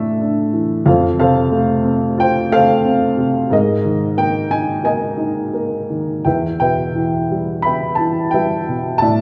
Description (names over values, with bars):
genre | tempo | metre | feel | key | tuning
classical, lyrical solo piano | 88 BPM | 4/4 | uneven beats, rubato | unclear | A4 = 440 Hz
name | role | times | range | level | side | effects
warm upright piano | solo | 0.0-9.2 s | E2 to B5 | -17 LUFS | equal | none
room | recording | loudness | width
wet recital hall reverb, RT60 1.6 s | recorded in a church or concert hall | -17 LUFS | mono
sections
0.0-9.2 A section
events
none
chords
0.0 Asus4; 0.9 F; 3.5 Absus2; 6.3 Em